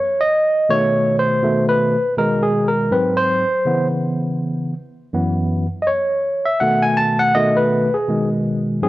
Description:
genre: hip hop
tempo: 81 BPM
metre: 4/4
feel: swing 60% on 16ths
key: unclear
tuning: A4 = 439 Hz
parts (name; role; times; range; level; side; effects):
- barky tine electric piano; solo; 0.0-8.9 s; F#2 to A5; -16 LUFS; equal; medium stereo tremolo
room: moderate echo chamber reverb, RT60 2.1 s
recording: worn, warbling old tape, cassette tape, warbly pitch drift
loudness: -16 LUFS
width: side -17 dB against mid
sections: 0.0-8.9 A section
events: tine electric piano solo 0.0-8.9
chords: 0.0 N.C.; 0.7 B7; 2.2 G#madd9/B; 2.9 G#7#9; 3.7 C#m7; 5.1 F#7sus4; 6.6 B7; 8.1 B6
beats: | 0.69 1.43 2.17 2.91 | 3.65 4.39 5.13 5.87 | 6.62 7.36 8.10 8.84

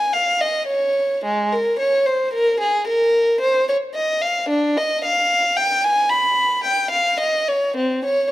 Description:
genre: classical, baroque-style suite movement for unaccompanied violin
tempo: 55 BPM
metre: 3/4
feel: rubato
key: F minor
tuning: A4 = 440 Hz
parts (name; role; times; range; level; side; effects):
- dark violin; solo; 0.0-8.3 s; Ab3 to B5; -17 LUFS; equal; none
room: moderate recital hall reverb, RT60 1.8 s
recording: close, detailed microphones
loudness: -17 LUFS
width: side -15 dB against mid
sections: 0.0-8.3 A section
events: none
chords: none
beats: 0.11 | 1.23 2.33 3.41 | 4.49 5.56 6.64 | 7.75

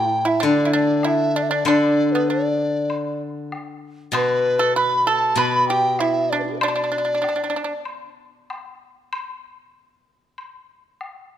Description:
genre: chinese traditional, Chinese chamber ensemble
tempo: 96 BPM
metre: 4/4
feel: straight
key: unclear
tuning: A4 = 440 Hz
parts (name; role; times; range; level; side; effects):
- mellow hollow large dizi; melody; 0.0-7.8 s; D4 to B5; -21 LUFS; equal; none
- pipa; second line; 0.0-7.7 s; B3 to B4; -24 LUFS; right 4 dB; none
- steel-string zither; accompaniment; 0.0-7.2 s; A2 to D3; -22 LUFS; left 3 dB; none
- woodblock; percussion; 0.4-11.2 s; none; -30 LUFS; left 3 dB; none
room: light reverb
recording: close, detailed microphones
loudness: -18 LUFS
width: side -10 dB against mid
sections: 0.0-11.4 A section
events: none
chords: none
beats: 0.42 1.05 | 1.67 2.29 2.91 3.53 | 4.14 4.76 5.37 5.99 | 6.61 7.24 7.87 8.50 | 9.13 9.76 10.39 11.01

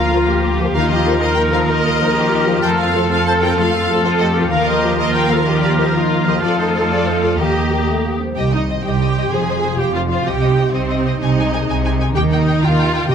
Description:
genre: cinematic, heroic adventure film score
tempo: 127 BPM (dotted quarters)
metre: 12/8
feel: straight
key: Eb lydian, C minor from 8.4 s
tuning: A4 = 441 Hz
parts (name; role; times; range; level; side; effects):
- rich symphonic violin section; melody; 0.0-13.1 s; Eb4 to Ab5; -25 LUFS; left 5 dB; none
- bright large flute ensemble; second line; 0.0-8.2 s; Eb6 to F6; -26 LUFS; equal; none
- clear oboe; second line; 0.0-8.2 s; A5 to Bb5; -26 LUFS; equal; none
- mellow clarinet; second line; 0.0-8.2 s; F4 to G4; -27 LUFS; left 2 dB; none
- warm symphonic violin section; second line; 0.0-13.1 s; Bb4 to A5; -24 LUFS; left 1 dB; none
- warm symphonic viola section; accompaniment; 0.0-13.1 s; Eb3 to Ab4; -23 LUFS; right 2 dB; none
- concert harp; arpeggios; 0.0-13.1 s; F2 to C6; -24 LUFS; left 11 dB; none
- clear trumpet section; stabs; 0.0-7.9 s; Eb4 to C5; -24 LUFS; equal; none
- warm symphonic cello section; bass; 0.0-13.1 s; C2 to Bb4; -21 LUFS; right 2 dB; none
- warm symphonic double bass section; bass; 0.0-13.1 s; F1 to F2; -20 LUFS; right 4 dB; none
- dark French horn section; sustained chords; 0.1-8.4 s; F3 to Bb4; -26 LUFS; left 3 dB; none
room: light reverb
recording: close, detailed microphones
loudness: -14 LUFS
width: side -7 dB against mid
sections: 0.0-8.4 A section; 8.4-13.1 B section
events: none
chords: 0.0 Bb/D; 0.7 Ebsus2; 2.6 F; 4.5 Ebsus2; 6.4 F; 7.4 Eb; 8.4 Cm; 9.3 Fm; 10.3 Cm; 11.2 Abadd9/C; 12.2 Ebadd9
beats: 0.27 | 0.74 1.21 1.68 2.15 | 2.63 3.10 3.57 4.04 | 4.52 4.99 5.46 5.94 | 6.42 6.90 7.39 7.87 | 8.36 8.84 9.32 9.79 | 10.26 10.74 11.21 11.69 | 12.16 12.63 13.10

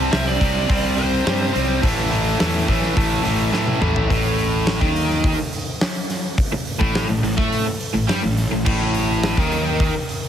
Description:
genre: hard rock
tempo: 106 BPM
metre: 4/4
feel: straight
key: unclear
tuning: A4 = 440 Hz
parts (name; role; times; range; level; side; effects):
- lead guitar through a small cranked amp; melody; 0.0-1.8 s; C5 to A5; -25 LUFS; equal; overdrive, slapback echo
- overdriven electric guitar; riff; 0.0-9.9 s; A2 to C4; -21 LUFS; equal; spring reverb
- fuzz fingered electric bass; bass; 0.0-9.9 s; A1 to A2; -24 LUFS; equal; overdrive
- huge arena drum kit; drums; 0.1-10.2 s; crash cymbal, hi-hat, kick drum, snare drum, toms; -22 LUFS; equal; none
room: studio ambience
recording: heavily compressed radio sound, multiband compression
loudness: -17 LUFS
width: side -9 dB against mid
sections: 0.0-4.1 A section; 4.1-10.3 B section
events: lead electric guitar solo 0.0-4.1; drum fill 3.5-4.1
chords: 0.0 C5; 1.8 A5; 4.1 Cm6 (rootless)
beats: 0.12 0.69 1.26 | 1.83 2.40 2.97 3.54 | 4.10 4.67 5.24 5.81 | 6.38 6.95 7.52 8.09 | 8.65 9.22 9.79

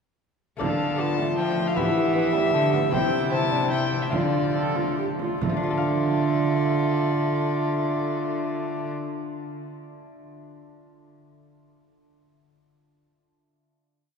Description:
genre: classical, renaissance-style consort dance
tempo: 132-156 BPM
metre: 3/4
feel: straight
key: D dorian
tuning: A4 = 440 Hz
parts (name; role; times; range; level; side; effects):
- dark violin; melody; 0.6-8.9 s; D5 to A5; -29 LUFS; left 4 dB; none
- warm viola; second line; 0.6-8.9 s; E4 to A4; -29 LUFS; right 3 dB; none
- clear bassoon; accompaniment; 0.6-8.9 s; G3 to F4; -31 LUFS; left 2 dB; none
- lute; accompaniment; 0.6-9.8 s; C3 to F5; -32 LUFS; left 2 dB; none
- rich cello; bass; 0.6-8.9 s; C3 to F3; -27 LUFS; right 1 dB; none
- frame drum; percussion; 0.6-5.6 s; none; -32 LUFS; right 3 dB; none
room: wet cathedral reverb, RT60 5.3 s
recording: heard from further back in the room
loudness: -22 LUFS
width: side -6 dB against mid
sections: 0.6-5.4 A section; 5.4-8.1 final chord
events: slowing down 2.3-5.4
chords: 0.6 Dm; 1.8 Em; 2.9 C; 4.1 Dm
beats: | 0.61 1.00 1.38 | 1.77 2.15 2.54 | 2.93 3.32 3.72 | 4.12 4.55 4.98 | 5.42 5.88 6.33 | 6.78 7.23 7.69

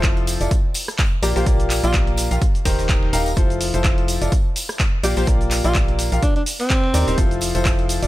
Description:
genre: piano house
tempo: 126 BPM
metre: 4/4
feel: swing 56% on 16ths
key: F major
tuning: A4 = 439 Hz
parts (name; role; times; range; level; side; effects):
- bright grand piano; riff; 0.0-8.1 s; Eb3 to F5; -24 LUFS; left 1 dB; sidechain pumping, dub echo
- organ-like FM bass; bass; 0.0-8.1 s; Eb1 to Eb2; -22 LUFS; equal; sidechain pumping
- dusty soul sampler-style drum kit; drums; 0.0-8.0 s; hi-hat, snare drum; -34 LUFS; equal; none
- electronic kick drum; drums; 0.0-7.8 s; none; -19 LUFS; equal; none
- punchy analog drum machine; drums; 0.0-8.1 s; handclaps, hi-hat, rim click, shaker; -26 LUFS; right 1 dB; none
- tambourine; percussion; 0.0-8.1 s; none; -32 LUFS; left 3 dB; none
- breathy alto saxophone; melody; 1.2-1.9, 5.0-7.2 s; C4 to G4; -26 LUFS; equal; dub echo
room: digital ambience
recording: none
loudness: -16 LUFS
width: side -16 dB against mid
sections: 0.0-8.1 A section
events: none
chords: 0.0 Fmaj7; 0.5 N.C.; 1.2 Bb6; 2.4 Eb; 3.4 Fmaj7; 4.3 N.C.; 5.0 Bb6; 6.2 Eb; 7.2 Fmaj7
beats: 0.04 0.51 0.99 | 1.46 1.94 2.42 2.89 | 3.37 3.85 4.32 4.80 | 5.27 5.75 6.23 6.70 | 7.18 7.65

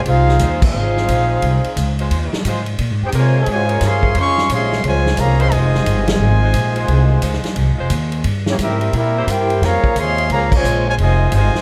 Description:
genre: jazz, big band swing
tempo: 176 BPM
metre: 4/4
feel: swing 64% on 8ths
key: F minor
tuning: A4 = 441 Hz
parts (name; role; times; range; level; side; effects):
- upright bass; bass; 0.0-11.6 s; F1 to C3; -19 LUFS; equal; none
- clear trumpet section; melody; 0.1-11.6 s; Bb3 to Db6; -21 LUFS; equal; none
- muted trombone section; second line; 0.1-11.6 s; C3 to Ab4; -25 LUFS; equal; none
- swinging big-band drum kit; drums; 0.1-11.6 s; crash cymbal, hi-hat, kick drum, ride cymbal, snare drum; -25 LUFS; equal; none
- warm saxophone section; sustained chords; 0.4-9.2, 11.3-11.6 s; Ab3 to Db5; -30 LUFS; equal; none
room: moderate large studio reverb, RT60 1.3 s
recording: dark, warm production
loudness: -16 LUFS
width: mono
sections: 0.0-11.6 A section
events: band accent 0.6, 6.0, 10.5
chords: 0.1 Fm7; 2.8 Bbm9; 5.5 Fm7; 8.3 C7; 9.6 Bbm9; 11.0 Fm7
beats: | 0.07 0.41 0.75 1.09 | 1.43 1.77 2.11 2.45 | 2.79 3.13 3.47 3.81 | 4.16 4.50 4.84 5.18 | 5.52 5.86 6.20 6.54 | 6.88 7.23 7.57 7.91 | 8.25 8.59 8.93 9.28 | 9.62 9.96 10.30 10.64 | 10.98 11.32

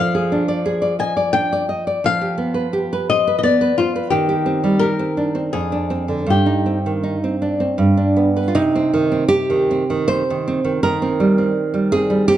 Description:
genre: romantic duo for nylon-string guitar and classical guitar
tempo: 71-91 BPM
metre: 3/4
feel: rubato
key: C minor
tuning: A4 = 440 Hz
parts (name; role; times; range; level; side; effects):
- flamenco guitar; melody; 0.0-7.8 s; F4 to Ab5; -20 LUFS; left 5 dB; none
- nylon-string guitar; accompaniment; 0.0-12.4 s; F2 to Eb5; -17 LUFS; right 2 dB; none
room: moderate recital hall reverb, RT60 1.6 s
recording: dark, warm production, nothing above 10.8 kHz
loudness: -16 LUFS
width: side -11 dB against mid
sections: 0.0-8.6 A section; 8.6-12.4 B section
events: none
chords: 0.0 Ddim/F; 2.0 G7/F; 4.1 Cm/Eb; 5.5 Dm7b5/F; 6.3 Cm/G; 7.8 G; 8.6 Cm; 10.8 Cm/Eb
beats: 0.65 1.33 | 2.03 2.73 3.43 | 4.11 4.81 5.54 | 6.28 7.05 7.80 | 8.56 9.31 10.12 | 10.85 11.56 12.28

